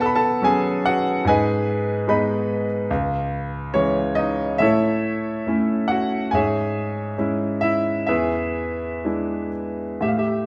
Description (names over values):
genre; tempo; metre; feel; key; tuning
classical, lyrical solo piano; 61-74 BPM; 4/4; rubato; C# minor; A4 = 441 Hz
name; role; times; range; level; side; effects
clear baby grand piano; solo; 0.0-10.5 s; C#2 to B5; -22 LUFS; equal; none
room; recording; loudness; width
wet recital hall reverb, RT60 1.6 s; recorded in a church or concert hall; -22 LUFS; mono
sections
0.0-10.0 A section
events
none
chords
0.0 Bsus2; 1.3 G#m; 2.9 C#m; 4.6 A; 6.3 C#m/G#; 8.1 E7